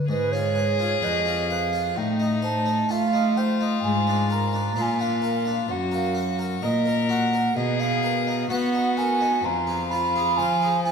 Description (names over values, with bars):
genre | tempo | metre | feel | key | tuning
classical, baroque-style sonata movement with continuo | 64 BPM | 4/4 | straight | unclear | A4 = 438 Hz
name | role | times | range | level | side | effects
mellow hollow wooden flute | second line | 0.0-10.9 s | Cb5 to Cb6 | -25 LUFS | right 5 dB | none
harpsichord | accompaniment | 0.0-10.9 s | F2 to F5 | -28 LUFS | left 3 dB | none
rich cello | bass | 0.0-10.9 s | F2 to B3 | -26 LUFS | equal | none
rich violin | melody | 0.1-10.9 s | Eb4 to Bb4 | -29 LUFS | left 7 dB | none
room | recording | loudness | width
wet scoring stage reverb, RT60 1.8 s | none | -21 LUFS | side -6 dB against mid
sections
0.1-10.9 A section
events
none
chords
0.1 Fdim/Ab; 2.0 F7/A; 3.8 Bb7/Ab; 5.7 Ebm/Gb; 7.6 Bmaj7; 9.4 Fdim